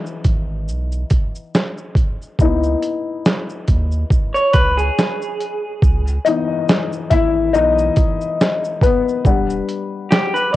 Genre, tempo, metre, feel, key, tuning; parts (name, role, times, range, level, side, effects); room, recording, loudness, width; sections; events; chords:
lo-fi hip hop; 70 BPM; 4/4; swing 56% on 16ths; C# minor; A4 = 440 Hz
dark upright piano; accompaniment; 0.0-10.6 s; E3 to F#5; -19 LUFS; left 5 dB; cassette tape, low-pass filter
boom bap sampler-style drum kit; drums; 0.1-10.6 s; hi-hat, kick drum, shaker, snare drum; -16 LUFS; right 1 dB; vintage 12-bit sampler grit
soft dub sub bass; bass; 0.3-9.6 s; E1 to D#2; -21 LUFS; right 1 dB; transformer saturation
electric guitar through a small old amp; second line; 4.3-10.6 s; G4 to D5; -18 LUFS; right 1 dB; low-pass filter, cassette tape, tape echo
light reverb; home recording on cassette; -15 LUFS; side -15 dB against mid
0.0-5.8 A section; 5.8-10.6 B section
upright piano solo 0.0-5.8, 5.8-10.6
0.0 C#m9; 5.8 C#m9 (rootless); 9.2 Em9